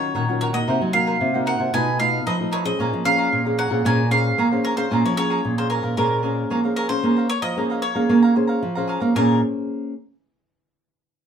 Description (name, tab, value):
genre	samba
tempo	113 BPM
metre	4/4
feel	straight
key	Bb minor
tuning	A4 = 442 Hz
part	bowl-back mandolin	melody	0.0-9.4 s	Bb4 to Ab5	-24 LUFS	equal	none
part	cavaquinho	accompaniment	0.0-9.4 s	Eb4 to Bb5	-27 LUFS	right 3 dB	none
part	nylon-string guitar	accompaniment	0.0-9.9 s	Bb2 to C5	-24 LUFS	left 2 dB	none
part	nylon-string guitar	bass	0.0-9.4 s	Bb2 to Bb3	-22 LUFS	right 2 dB	none
room	wet small room reverb, RT60 0.5 s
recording	minimal, uncompressed stereo recording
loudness	-18 LUFS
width	side -8 dB against mid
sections	0.0-7.0 A section; 7.0-9.2 B section; 9.2-11.3 C section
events	none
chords	0.0 Ebm9; 0.7 Cm7b5; 1.7 B7#11; 2.8 Bbm9